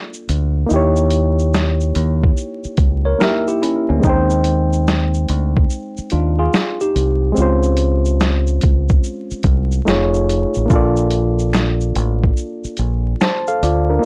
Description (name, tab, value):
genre	lo-fi hip hop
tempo	72 BPM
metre	4/4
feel	swing 65% on 16ths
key	unclear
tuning	A4 = 440 Hz
part	reed electric piano	accompaniment	0.0-14.1 s	Ab3 to A5	-22 LUFS	equal	cassette tape, low-pass filter
part	lo-fi sampler-style drum kit	drums	0.1-13.9 s	hi-hat, kick drum, shaker, snare drum	-20 LUFS	equal	none
part	deep dub fingered electric bass	bass	0.3-14.0 s	F1 to Eb2	-19 LUFS	equal	tube saturation
part	tine electric piano	second line	3.1-7.3 s	Bb3 to Db5	-23 LUFS	equal	low-pass filter, analog delay
part	finger snaps	percussion	11.5-13.5 s	none	-32 LUFS	equal	none
room	little or no reverb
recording	dry, gritty hardware recording, transformer saturation, vinyl crackle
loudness	-17 LUFS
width	mono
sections	0.0-14.1 A section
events	none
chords	0.0 Bbmaj7; 0.7 Eb7b9; 4.0 Abmaj7; 7.4 Dbmaj7; 9.9 F7alt; 10.7 Bbmaj7